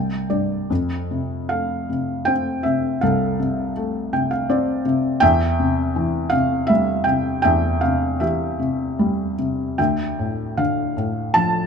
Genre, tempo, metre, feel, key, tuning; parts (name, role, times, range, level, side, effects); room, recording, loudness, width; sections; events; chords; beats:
classical, lyrical solo piano; 73-83 BPM; 3/4; rubato; A4 = 440 Hz
felt-muted upright piano; solo; 0.0-11.7 s; C2 to A5; -18 LUFS; equal
light reverb; close, detailed microphones; -18 LUFS; side -6 dB against mid
0.7-11.7 A section
felt piano fill 0.0-0.7, 3.8-5.2
0.0 C5; 0.7 F; 5.2 C/E; 9.8 Dmadd9
| 0.70 1.50 2.27 | 3.03 3.76 4.49 | 5.22 5.95 6.69 | 7.44 8.20 8.98 | 9.79 10.58 11.36